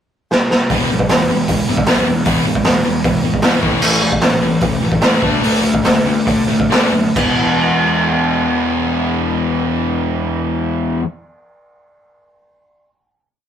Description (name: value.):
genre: punk rock.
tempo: 130-154 BPM.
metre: 4/4.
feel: straight.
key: E mixolydian.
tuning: A4 = 440 Hz.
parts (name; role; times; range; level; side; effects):
raw garage drum kit; drums; 0.3-7.3 s; crash cymbal, hi-hat, kick drum, snare drum; -16 LUFS; equal; none.
distorted electric guitar; riff; 0.7-11.1 s; A2 to E4; -21 LUFS; right 7 dB; overdrive.
sludgy distorted guitar; riff; 0.7-11.1 s; E2 to D4; -18 LUFS; left 5 dB; overdrive.
fuzz picked electric bass; bass; 0.7-11.0 s; E1 to D3; -24 LUFS; right 1 dB; overdrive.
room: light reverb.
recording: rough rehearsal-room recording.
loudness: -13 LUFS.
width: side -9 dB against mid.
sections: 0.0-0.7 pickup bar; 0.7-7.2 verse; 7.2-10.9 final chord.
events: drum fill 0.3-0.7; slowing down 3.8-7.2.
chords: 0.0 N.C.; 0.7 E; 3.6 A5; 5.2 D5; 7.2 E.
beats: 0.31 | 0.70 1.09 1.49 1.88 | 2.27 2.66 3.05 3.44 | 3.83 4.23 4.62 5.02 | 5.43 5.85 6.27 6.71 | 7.17 7.63 8.09 8.55 | 9.01 9.47 9.94 10.40.